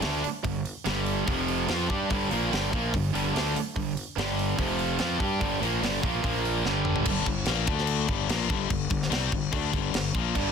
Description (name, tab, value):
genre	hard rock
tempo	145 BPM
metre	4/4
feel	straight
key	unclear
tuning	A4 = 439 Hz
part	cranked stack guitar	riff	0.0-10.5 s	F2 to G4	-29 LUFS	left 11 dB	overdrive
part	heavy high-gain guitar	riff	0.0-7.1, 10.4-10.5 s	F2 to G4	-29 LUFS	right 12 dB	distortion
part	fuzz fingered electric bass	bass	0.0-10.5 s	F1 to G2	-32 LUFS	equal	overdrive
part	tight metal drum kit	drums	0.0-10.4 s	crash cymbal, hi-hat, kick drum, snare drum, toms	-31 LUFS	equal	soft clipping on kick
room	light reverb, small room ambience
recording	dense, heavily limited modern master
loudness	-25 LUFS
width	side -6 dB against mid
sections	0.0-7.1 A section; 7.1-10.5 B section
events	drum fill 6.6-7.1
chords	0.0 G5; 1.3 F5; 1.7 G5; 4.6 F5; 5.0 G5; 6.2 Bb5; 6.6 G5; 7.7 D5; 8.1 G5